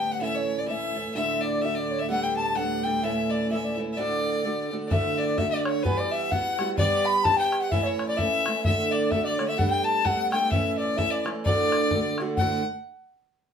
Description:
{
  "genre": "celtic folk, Celtic polka",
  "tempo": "128 BPM",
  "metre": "2/4",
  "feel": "swing 58% on 8ths",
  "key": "D major",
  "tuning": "A4 = 444 Hz",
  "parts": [
    { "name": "mellow baroque flute", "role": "melody", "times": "0.0-12.6 s", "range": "B4 to B5", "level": "-27 LUFS", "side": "left 2 dB", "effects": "none" },
    { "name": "bright fiddle", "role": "second line", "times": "0.0-12.6 s", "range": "B4 to B5", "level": "-30 LUFS", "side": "left 3 dB", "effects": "none" },
    { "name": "picked steel-string acoustic guitar", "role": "accompaniment", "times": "0.0-12.6 s", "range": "D2 to G4", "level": "-28 LUFS", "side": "right 4 dB", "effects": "none" },
    { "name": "warm studio string section", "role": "drone", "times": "0.0-5.0 s", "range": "D2 to A2", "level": "-36 LUFS", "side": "right 3 dB", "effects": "none" },
    { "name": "bodhran", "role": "percussion", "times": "4.9-12.6 s", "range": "none", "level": "-28 LUFS", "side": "left 1 dB", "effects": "none" }
  ],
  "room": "wet studio reverb, RT60 0.5 s",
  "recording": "band playing live in one room",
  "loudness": "-23 LUFS",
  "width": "side -7 dB against mid",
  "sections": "0.0-4.9 A section; 4.9-12.4 A section",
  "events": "none",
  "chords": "0.2 A; 1.1 D; 2.1 Gadd9; 3.0 A; 4.0 D; 5.9 Emadd9; 6.8 G; 7.7 A; 8.7 D; 9.6 Gadd9; 10.5 A; 11.5 D",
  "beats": "| 0.20 0.67 | 1.14 1.61 | 2.08 2.56 | 3.03 3.50 | 3.97 4.44 | 4.91 5.38 | 5.85 6.32 | 6.79 7.26 | 7.72 8.19 | 8.66 9.13 | 9.59 10.06 | 10.53 10.99 | 11.46 11.92 | 12.39"
}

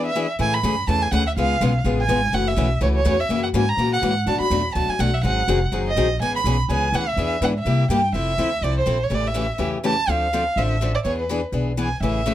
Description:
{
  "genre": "acoustic string swing (jazz manouche)",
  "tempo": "248 BPM",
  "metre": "4/4",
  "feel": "swing 56% on 8ths",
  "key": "A major, F major from 8.1 s",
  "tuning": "A4 = 441 Hz",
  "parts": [
    { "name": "warm violin", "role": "melody", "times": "0.0-12.3 s", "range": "B4 to B5", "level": "-23 LUFS", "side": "right 2 dB", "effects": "none" },
    { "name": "picked steel-string acoustic guitar", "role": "accompaniment", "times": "0.0-12.3 s", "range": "B2 to A4", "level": "-24 LUFS", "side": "left 4 dB", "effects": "none" },
    { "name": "upright bass", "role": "bass", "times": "0.4-12.3 s", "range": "F1 to C3", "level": "-23 LUFS", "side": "equal", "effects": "none" }
  ],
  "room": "light reverb",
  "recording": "none",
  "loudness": "-18 LUFS",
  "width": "side -12 dB against mid",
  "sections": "0.4-8.1 A section; 8.1-12.3 B section",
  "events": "break 0.0-0.4",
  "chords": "0.4 Amaj7; 1.4 C#7b13; 2.3 F#m7; 3.3 F#7; 4.3 Bm7; 5.2 G#7; 6.2 C#m7; 7.2 E7; 7.7 C7; 8.1 Fmaj7; 9.1 A7; 10.1 Dm7; 11.0 E7",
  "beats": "0.16 | 0.40 0.64 0.88 1.12 | 1.37 1.61 1.85 2.09 | 2.33 2.58 2.82 3.06 | 3.30 3.54 3.79 4.03 | 4.27 4.51 4.75 4.99 | 5.24 5.48 5.72 5.96 | 6.20 6.45 6.69 6.93 | 7.17 7.41 7.66 7.90 | 8.14 8.38 8.62 8.87 | 9.11 9.35 9.59 9.84 | 10.08 10.32 10.56 10.81 | 11.05 11.29 11.53 11.78 | 12.02 12.26"
}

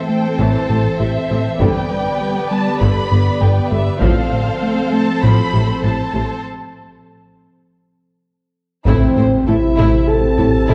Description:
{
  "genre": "cinematic, hybrid orchestral and electronic film score",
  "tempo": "99 BPM",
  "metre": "4/4",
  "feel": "straight",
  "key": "A minor",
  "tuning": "A4 = 440 Hz",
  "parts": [
    { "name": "dark symphonic violin section", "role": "melody", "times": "0.0-10.7 s", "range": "C5 to B5", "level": "-27 LUFS", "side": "equal", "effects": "none" },
    { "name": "rich symphonic violin section", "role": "second line", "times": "0.0-10.7 s", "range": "E4 to D5", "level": "-28 LUFS", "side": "equal", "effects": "none" },
    { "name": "rich symphonic viola section", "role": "accompaniment", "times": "0.0-10.7 s", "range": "C3 to E4", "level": "-26 LUFS", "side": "equal", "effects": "none" },
    { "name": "dark analog pad", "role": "sustained chords", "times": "0.0-10.7 s", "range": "C3 to D5", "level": "-26 LUFS", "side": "equal", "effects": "chorus, phaser" },
    { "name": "smooth synth bass", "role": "riff", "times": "0.1-10.7 s", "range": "G2 to A3", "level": "-21 LUFS", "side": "equal", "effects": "none" },
    { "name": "rich symphonic cello section", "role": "bass", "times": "0.4-10.7 s", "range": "G2 to A2", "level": "-25 LUFS", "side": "equal", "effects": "none" },
    { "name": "rich symphonic double bass section", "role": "bass", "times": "0.4-10.7 s", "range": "G1 to A1", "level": "-24 LUFS", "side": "equal", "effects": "none" },
    { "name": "taiko ensemble", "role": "drums", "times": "1.6-4.6, 8.9-10.7 s", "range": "none", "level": "-24 LUFS", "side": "equal", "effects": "none" },
    { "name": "dark trombone section", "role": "sustained chords", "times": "8.9-10.7 s", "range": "C3 to C4", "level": "-25 LUFS", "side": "equal", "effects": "none" },
    { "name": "mellow French horn section", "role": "sustained chords", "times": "8.9-10.7 s", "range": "C4 to A4", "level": "-19 LUFS", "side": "equal", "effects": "none" },
    { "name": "pure sine sub bass", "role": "bass", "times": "8.9-10.7 s", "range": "A1", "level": "-23 LUFS", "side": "equal", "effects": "none" },
    { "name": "impact", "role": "sound effects", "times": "8.9-10.7 s", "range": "none", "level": "-28 LUFS", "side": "equal", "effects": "none" }
  ],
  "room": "moderate scoring stage reverb, RT60 1.8 s",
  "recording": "dark, warm production",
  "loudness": "-16 LUFS",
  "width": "mono",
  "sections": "0.0-8.9 A section; 8.9-10.7 B section",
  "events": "break 6.4-8.9; drum fill 8.0-8.9; impact 8.9-10.7",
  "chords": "0.0 Am; 1.6 G; 4.0 F/A; 6.4 N.C.; 8.9 Am",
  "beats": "0.39 0.99 | 1.60 2.21 2.81 3.42 | 4.03 4.63 5.24 5.84 | 6.45 7.05 7.66 8.27 | 8.87 9.48 10.09 10.69"
}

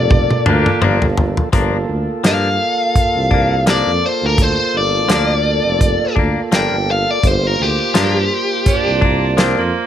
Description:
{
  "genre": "straight-eighth soul blues",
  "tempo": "84 BPM",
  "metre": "4/4",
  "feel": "swing 56% on 16ths",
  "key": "G minor",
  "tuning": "A4 = 440 Hz",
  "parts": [
    { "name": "biting lead guitar", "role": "melody", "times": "0.0-9.0 s", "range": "G4 to G5", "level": "-18 LUFS", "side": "left 2 dB", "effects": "overdrive" },
    { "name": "mellow tonewheel organ", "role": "accompaniment", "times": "0.0-9.9 s", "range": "Bb3 to C5", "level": "-22 LUFS", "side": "right 5 dB", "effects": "slow rotary speaker" },
    { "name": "mellow tuba", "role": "bass", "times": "0.0-9.7 s", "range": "F1 to G2", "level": "-19 LUFS", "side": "equal", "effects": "none" },
    { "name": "warm soul drum kit", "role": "drums", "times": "0.1-9.6 s", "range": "hi-hat, kick drum, snare drum, toms", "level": "-16 LUFS", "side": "equal", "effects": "none" },
    { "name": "clear horn section", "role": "sustained chords", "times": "0.5-1.0 s", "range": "Bb3 to G4", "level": "-22 LUFS", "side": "equal", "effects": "none" },
    { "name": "direct-recorded clean electric guitar", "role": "stabs", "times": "0.5-9.6 s", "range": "F3 to D4", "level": "-21 LUFS", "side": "left 6 dB", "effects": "none" },
    { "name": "clear tenor saxophone", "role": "second line", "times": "8.7-9.9 s", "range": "Bb3 to D4", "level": "-19 LUFS", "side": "right 6 dB", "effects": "none" }
  ],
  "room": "little or no reverb",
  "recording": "none",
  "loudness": "-13 LUFS",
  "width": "side -10 dB against mid",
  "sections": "0.0-1.5 A section; 1.5-9.9 B section",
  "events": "drum fill 0.0-1.5; lead electric guitar solo 0.0-1.5",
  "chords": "0.0 Gm7",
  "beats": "0.11 0.82 | 1.53 2.24 2.96 3.67 | 4.38 5.10 5.81 6.52 | 7.24 7.95 8.67 9.38"
}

